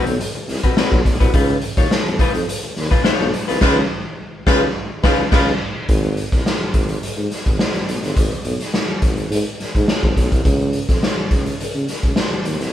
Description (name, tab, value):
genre	funk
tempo	105 BPM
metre	4/4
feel	straight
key	unclear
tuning	A4 = 440 Hz
part	semi-hollow electric guitar	accompaniment	0.0-5.5 s	C4 to Db5	-22 LUFS	left 5 dB	none
part	warm tuba	bass	0.1-12.7 s	G1 to Db3	-22 LUFS	equal	none
part	raw garage drum kit	drums	0.1-12.7 s	crash cymbal, hi-hat, kick drum, snare drum	-18 LUFS	equal	none
part	warm horn section	second line	3.6-5.5 s	Ab3 to Cb5	-21 LUFS	left 1 dB	none
room	light reverb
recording	band playing live in one room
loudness	-16 LUFS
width	side -11 dB against mid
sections	0.0-5.9 A section; 5.9-12.7 B section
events	band accent 3.6-5.9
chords	0.0 Ab7#9 (rootless); 1.3 Db9; 5.9 N.C.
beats	0.20 0.77 | 1.34 1.91 2.48 3.05 | 3.62 4.18 4.75 5.32 | 5.89 6.46 7.03 7.60 | 8.17 8.74 9.31 9.88 | 10.46 11.03 11.60 12.17